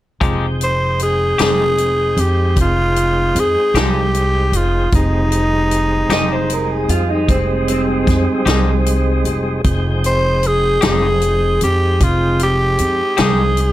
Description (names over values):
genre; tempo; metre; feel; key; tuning
slow blues; 51 BPM (dotted quarters); 12/8; straight; F minor; A4 = 439 Hz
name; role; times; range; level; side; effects
twangy electric guitar; accompaniment; 0.2-13.4 s; F3 to G4; -20 LUFS; left 6 dB; harmonic tremolo
tonewheel organ; sustained chords; 0.2-13.7 s; G3 to G5; -23 LUFS; equal; slow rotary speaker
upright bass; bass; 0.2-13.7 s; F1 to F2; -18 LUFS; equal; none
swinging big-band drum kit; drums; 0.2-13.7 s; hi-hat, kick drum, snare drum; -20 LUFS; equal; none
growling tenor saxophone; melody; 0.6-13.7 s; Eb4 to C5; -17 LUFS; equal; none
electric guitar through a small old amp; second line; 6.1-9.2 s; C4 to Eb5; -20 LUFS; right 3 dB; wide subtle chorus
room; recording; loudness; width
light reverb; none; -13 LUFS; side -14 dB against mid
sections
0.2-13.7 A section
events
none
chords
0.2 Fm9